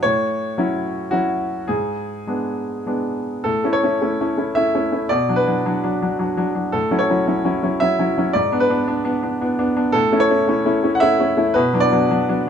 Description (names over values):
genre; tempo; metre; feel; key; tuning
neoclassical minimalist piano; 110 BPM; 3/4; rubato; unclear; A4 = 440 Hz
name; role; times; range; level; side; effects
clear concert grand piano; solo; 0.0-12.5 s; G#2 to F#5; -17 LUFS; equal; none
room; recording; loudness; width
moderate studio ambience, RT60 0.5 s; band playing live in one room; -17 LUFS; side -8 dB against mid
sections
0.0-3.4 A section; 3.4-12.5 B section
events
none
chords
0.0 F#m7/A; 1.7 G#dim; 3.4 A; 5.1 Bm; 6.7 F#m7/A; 8.3 G#dim (rootless); 9.9 A; 11.6 Bm